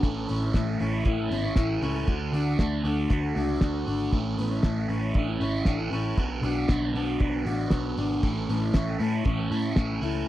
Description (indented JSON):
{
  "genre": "jangly indie pop",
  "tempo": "117 BPM",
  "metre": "4/4",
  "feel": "straight",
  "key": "A major",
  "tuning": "A4 = 440 Hz",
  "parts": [
    { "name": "crunchy overdriven guitar", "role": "accompaniment", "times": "0.0-10.3 s", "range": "A2 to F#4", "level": "-30 LUFS", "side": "right 5 dB", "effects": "phaser" },
    { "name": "mellow electric guitar", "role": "arpeggios", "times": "0.0-10.3 s", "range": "A2 to F#4", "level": "-29 LUFS", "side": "left 4 dB", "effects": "none" },
    { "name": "vintage muted picked electric bass", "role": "bass", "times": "0.0-10.2 s", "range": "G#1 to A2", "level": "-31 LUFS", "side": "equal", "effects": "none" },
    { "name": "cloth-damped thuddy drum kit", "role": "drums", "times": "0.0-10.1 s", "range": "crash cymbal, hi-hat, kick drum, snare drum", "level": "-24 LUFS", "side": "equal", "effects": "none" }
  ],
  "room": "studio ambience",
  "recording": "dry, close 1970s-style studio recording",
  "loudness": "-24 LUFS",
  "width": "side -14 dB against mid",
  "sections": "0.0-8.2 A section; 8.2-10.3 B section",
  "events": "none",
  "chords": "0.0 A; 2.1 D; 4.1 A; 6.2 Bm; 8.2 A"
}